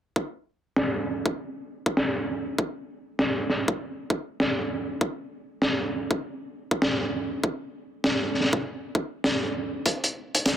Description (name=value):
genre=glitch hop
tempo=99 BPM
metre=4/4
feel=swing 61% on 16ths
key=none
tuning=none
part: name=electronic kick drum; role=drums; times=0.2-10.0 s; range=none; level=-26 LUFS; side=equal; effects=high-pass filter on kick, high-pass filter on room
part: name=crunchy breakbeat drum kit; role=drums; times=0.8-10.6 s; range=hi-hat, snare drum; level=-25 LUFS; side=equal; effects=low-pass filter on hats, low-pass filter on snare, low-pass filter on room
room=wet plate reverb, RT60 2.2 s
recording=dense, heavily limited modern master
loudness=-25 LUFS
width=side -10 dB against mid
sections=0.2-10.6 A section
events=filter sweep on drum 0.2-10.6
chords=none